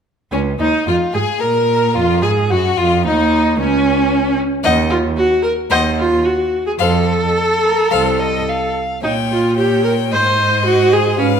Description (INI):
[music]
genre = quick classical-period movement for string quartet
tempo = 110 BPM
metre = 4/4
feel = rubato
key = Bb minor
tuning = A4 = 442 Hz
[part]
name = clear violin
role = melody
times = 0.3-11.4 s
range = Db4 to G5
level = -21 LUFS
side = left 8 dB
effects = none
[part]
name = rich violin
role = second line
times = 0.3-11.4 s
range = Db4 to F5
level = -22 LUFS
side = left 3 dB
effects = none
[part]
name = clear viola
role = accompaniment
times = 0.3-11.3 s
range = Db4 to C5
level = -16 LUFS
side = right 1 dB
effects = none
[part]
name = rich cello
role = bass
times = 0.3-11.4 s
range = C2 to Bb2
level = -19 LUFS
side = right 4 dB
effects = none
[sound]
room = wet recital hall reverb, RT60 1.3 s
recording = none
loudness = -13 LUFS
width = side -7 dB against mid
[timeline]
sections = 0.3-11.4 A section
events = none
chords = 0.3 Bb5; 2.5 Gb5; 4.6 Ebm; 6.8 F; 9.0 Bbm6; 10.1 Ab